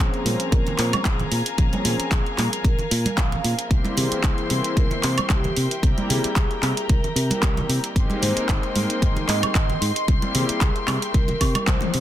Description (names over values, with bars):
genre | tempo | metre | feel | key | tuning
nu-disco, nu disco | 113 BPM | 4/4 | swing 54% on 16ths | unclear | A4 = 440 Hz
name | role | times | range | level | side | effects
vibraphone with soft mallets | melody | 0.0-12.0 s | G4 to F5 | -30 LUFS | equal | ping-pong delay
warm analog pad | accompaniment | 0.0-11.7 s | E3 to C5 | -30 LUFS | equal | chorus, sidechain pumping, digital delay
dark studio string section | sustained chords | 0.0-12.0 s | Ab4 to C6 | -31 LUFS | left 4 dB | vintage 12-bit sampler grit, sidechain pumping
fingered electric bass | bass | 0.0-12.0 s | Ab1 to C3 | -25 LUFS | equal | none
pop drum kit | drums | 0.0-12.0 s | handclaps, hi-hat, toms, woodblock | -26 LUFS | right 1 dB | none
congas | percussion | 0.3-11.9 s | none | -30 LUFS | right 3 dB | none
electronic kick drum | drums | 0.5-11.8 s | none | -21 LUFS | equal | none
room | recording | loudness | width
little or no reverb | dense, heavily limited modern master | -19 LUFS | side -12 dB against mid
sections
0.0-12.0 A section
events
drum fill 11.7-12.0; band accent 11.7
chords
0.0 Bbm7; 3.7 C7; 8.0 Abmaj7; 10.1 C7